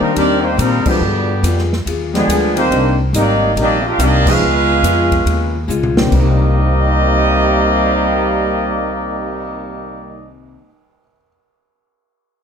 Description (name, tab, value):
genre	jazz, big band swing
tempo	141 BPM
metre	4/4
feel	swing 64% on 8ths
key	C minor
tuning	A4 = 436 Hz
part	mellow trumpet section	melody	0.0-10.3 s	G3 to F5	-17 LUFS	equal	none
part	warm trombone section	second line	0.0-10.3 s	B2 to F4	-19 LUFS	right 2 dB	none
part	picked steel-string acoustic guitar	accompaniment	0.0-10.7 s	Ab2 to Ab4	-24 LUFS	left 6 dB	none
part	warm concert grand piano	accompaniment	0.0-11.3 s	C3 to G6	-23 LUFS	left 4 dB	none
part	upright bass	bass	0.0-10.6 s	Ab1 to Bb2	-17 LUFS	equal	none
part	swinging big-band drum kit	drums	0.2-9.4 s	crash cymbal, cymbal swell, hi-hat, kick drum, ride cymbal, snare drum, toms	-22 LUFS	equal	none
room	light reverb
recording	none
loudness	-12 LUFS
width	side -7 dB against mid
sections	0.0-6.1 A section; 6.1-9.5 B section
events	band accent 0.8, 4.2; drum fill 5.7-6.1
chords	0.0 Abmaj9#11; 1.0 G7b9; 2.7 Cm9; 4.4 Db7; 6.1 Cm9